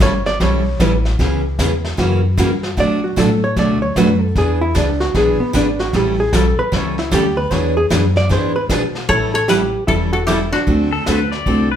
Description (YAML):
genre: country, western swing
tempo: 152 BPM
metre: 4/4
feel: swing 64% on 8ths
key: A mixolydian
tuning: A4 = 440 Hz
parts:
  - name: hollow-body jazz guitar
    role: second line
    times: 0.0-10.9 s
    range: B3 to D5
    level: -19 LUFS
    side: right 1 dB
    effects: none
  - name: picked steel-string acoustic guitar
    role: accompaniment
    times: 0.0-11.7 s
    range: B2 to A4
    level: -18 LUFS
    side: right 1 dB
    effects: none
  - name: upright bass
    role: bass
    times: 0.0-11.8 s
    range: E1 to B2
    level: -19 LUFS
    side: equal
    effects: none
  - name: vintage brush drum kit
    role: drums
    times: 0.0-11.8 s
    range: brushed snare drum, hi-hat, kick drum, snare drum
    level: -24 LUFS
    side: equal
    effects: none
  - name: koto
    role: melody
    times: 9.1-11.8 s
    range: F#4 to C#5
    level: -20 LUFS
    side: left 3 dB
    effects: none
  - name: pedal steel guitar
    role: second line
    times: 10.9-11.8 s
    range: A4 to D5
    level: -22 LUFS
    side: left 6 dB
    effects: none
room: moderate large studio reverb, RT60 0.8 s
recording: band playing live in one room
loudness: -14 LUFS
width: side -9 dB against mid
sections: 0.0-9.1 A section; 9.1-11.8 B section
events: hollow-body jazz guitar solo 0.0-9.1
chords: 0.0 A7; 1.2 C#m7; 2.0 F#7b9; 2.8 Bm7; 4.4 E7; 5.9 A7; 7.5 E7; 9.1 A7; 10.7 D7